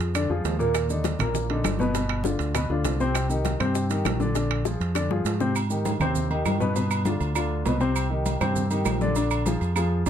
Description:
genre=latin, salsa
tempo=200 BPM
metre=4/4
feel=straight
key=unclear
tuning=A4 = 440 Hz
part: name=warm baby grand piano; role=accompaniment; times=0.0-10.1 s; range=Bb2 to D5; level=-26 LUFS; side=left 2 dB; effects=none
part: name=deep dub fingered electric bass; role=bass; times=0.0-10.1 s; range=G1 to Ab2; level=-26 LUFS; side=right 1 dB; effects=none
part: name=maracas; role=percussion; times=0.0-10.1 s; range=none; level=-40 LUFS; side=right 9 dB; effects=none
part: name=timbales and agogo bells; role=percussion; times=0.0-10.1 s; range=none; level=-32 LUFS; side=right 7 dB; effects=none
part: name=claves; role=percussion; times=0.1-9.9 s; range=none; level=-35 LUFS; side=right 11 dB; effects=none
part: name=congas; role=percussion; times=0.1-10.1 s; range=none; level=-33 LUFS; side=left 1 dB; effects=none
part: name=bongos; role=percussion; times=0.7-5.5 s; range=none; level=-33 LUFS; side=left 12 dB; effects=none
room=light reverb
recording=close, detailed microphones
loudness=-22 LUFS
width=side -9 dB against mid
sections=0.0-5.6 A section; 5.6-10.1 B section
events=drum fill 5.0-5.6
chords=0.0 Bb7; 0.7 Ebmaj7; 1.9 G7; 3.1 Cm9; 4.4 Bb9; 5.6 Abmaj7; 6.8 G7; 8.0 Cm7; 9.2 Bb7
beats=0.15 0.45 | 0.75 1.05 1.35 1.65 | 1.95 2.25 2.55 2.85 | 3.15 3.45 3.75 4.05 | 4.35 4.65 4.95 5.25 | 5.55 5.85 6.15 6.46 | 6.75 7.06 7.36 7.66 | 7.96 8.26 8.56 8.86 | 9.16 9.46 9.76 10.06

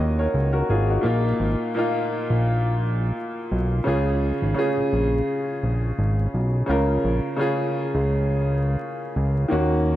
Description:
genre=hip hop, boom-bap hip-hop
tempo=85 BPM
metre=4/4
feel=swing 56% on 16ths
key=unclear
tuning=A4 = 440 Hz
part: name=warm upright piano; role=accompaniment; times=0.0-10.0 s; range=Bb2 to Eb5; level=-23 LUFS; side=equal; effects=cassette tape, high-pass filter, low-pass filter
part: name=fat analog bass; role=bass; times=0.0-10.0 s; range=Ab1 to Eb2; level=-22 LUFS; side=equal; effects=none
room=wet plate reverb, RT60 2.5 s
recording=dreamy mix soaked in reverb, vinyl crackle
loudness=-20 LUFS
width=side -14 dB against mid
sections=0.0-10.0 A section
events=none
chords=0.0 Ebm7; 1.0 Bbsus4; 3.9 Db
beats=0.34 | 1.04 1.75 2.45 3.16 | 3.87 4.57 5.28 5.98 | 6.69 7.39 8.10 8.81 | 9.51

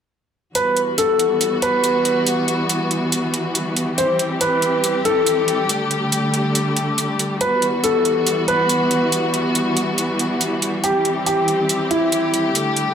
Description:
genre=heavy wobble dubstep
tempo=140 BPM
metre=4/4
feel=half-time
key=E minor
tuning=A4 = 440 Hz
part: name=warm baby grand piano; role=melody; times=0.6-12.5 s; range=E4 to C5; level=-18 LUFS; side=equal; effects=digital delay
part: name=warm studio string section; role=sustained chords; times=0.6-12.9 s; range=D3 to G4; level=-20 LUFS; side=left 1 dB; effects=none
part: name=electronic hi-hat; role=drums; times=0.6-12.9 s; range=none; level=-22 LUFS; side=right 2 dB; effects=none
room=moderate digital room reverb, RT60 1.1 s, studio ambience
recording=none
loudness=-16 LUFS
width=side -8 dB against mid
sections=0.6-12.9 A section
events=none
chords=0.6 Emadd9; 4.0 C; 5.7 Gsus2/D; 7.4 Emadd9; 10.8 C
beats=| 0.55 0.98 1.41 1.84 | 2.27 2.69 3.12 3.55 | 3.98 4.41 4.84 5.27 | 5.70 6.12 6.55 6.98 | 7.41 7.84 8.27 8.70 | 9.12 9.55 9.98 10.41 | 10.84 11.27 11.70 12.12 | 12.55

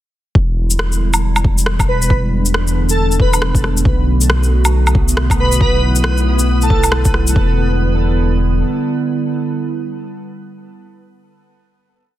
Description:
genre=future garage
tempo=137 BPM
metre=4/4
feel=swing 60% on 16ths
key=E minor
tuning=A4 = 443 Hz
part: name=warbly tape-like pad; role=sustained chords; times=0.3-11.0 s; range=D3 to F#4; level=-21 LUFS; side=right 2 dB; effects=chorus, built-in reverb, sidechain pumping
part: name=dark detuned saw bass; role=bass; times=0.4-8.6 s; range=E1 to B1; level=-16 LUFS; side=equal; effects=sidechain pumping
part: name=electronic kick drum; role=drums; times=0.4-7.5 s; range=none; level=-15 LUFS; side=equal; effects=none
part: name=electronic shaker, rim click and woodblock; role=drums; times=0.7-7.3 s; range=none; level=-19 LUFS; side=equal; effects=soft clipping on snare
part: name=airy dreamy lead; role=melody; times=1.9-7.1 s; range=A4 to B4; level=-22 LUFS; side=right 1 dB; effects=chorus, analog delay
part: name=backwards swelling texture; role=texture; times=4.4-7.4 s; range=B3 to B4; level=-28 LUFS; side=equal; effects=built-in reverb
room=light reverb, digital ambience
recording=dense, heavily limited modern master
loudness=-12 LUFS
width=side -13 dB against mid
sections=0.4-7.4 groove; 7.4-10.9 final chord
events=none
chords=0.4 Em7; 3.9 Bm7; 7.4 Em7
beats=| 0.35 0.79 1.23 1.67 | 2.11 2.54 2.98 3.42 | 3.86 4.30 4.73 5.17 | 5.61 6.05 6.49 6.92 | 7.36 7.80 8.24 8.68 | 9.11 9.55 9.99 10.43

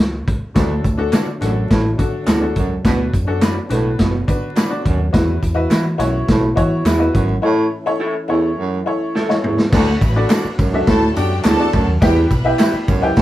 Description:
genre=uptempo 1960s-style soul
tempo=105 BPM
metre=4/4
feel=straight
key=D major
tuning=A4 = 440 Hz
part: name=vintage muted fingered electric bass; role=bass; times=0.0-13.1 s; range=F#1 to E3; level=-21 LUFS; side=equal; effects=none
part: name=vintage drum kit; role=drums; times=0.3-13.2 s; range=crash cymbal, hi-hat, kick drum, ride cymbal, snare drum, toms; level=-17 LUFS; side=equal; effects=none
part: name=percussive tonewheel organ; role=sustained chords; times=0.5-13.2 s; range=D3 to G4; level=-30 LUFS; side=equal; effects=none
part: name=bright upright piano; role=accompaniment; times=0.6-13.2 s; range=D4 to G5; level=-21 LUFS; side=left 2 dB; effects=none
part: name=breathy baritone saxophone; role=riff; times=0.6-13.2 s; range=D2 to B2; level=-20 LUFS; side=right 2 dB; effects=none
part: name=tambourine and handclaps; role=percussion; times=0.6-13.2 s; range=none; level=-34 LUFS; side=left 1 dB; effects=none
part: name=electric guitar through a small old amp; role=stabs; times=1.1-12.7 s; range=D4 to E5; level=-24 LUFS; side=right 2 dB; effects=none
part: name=clear studio violin section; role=second line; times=9.7-13.2 s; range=F#4 to B5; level=-26 LUFS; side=equal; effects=none
room=moderate studio reverb, RT60 0.5 s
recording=band playing live in one room, vinyl crackle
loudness=-14 LUFS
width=side -14 dB against mid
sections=0.0-9.7 A section; 9.7-13.2 B section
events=break 7.4-9.7; drum fill 9.2-9.7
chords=0.0 N.C.; 0.6 D; 2.8 Bm; 5.1 Esus2; 7.4 A; 9.7 D; 12.0 Em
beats=| 0.56 1.13 1.70 2.28 | 2.85 3.42 3.99 4.57 | 5.14 5.71 6.29 6.86 | 7.43 8.01 8.58 9.15 | 9.72 10.30 10.87 11.44 | 12.02 12.59 13.16

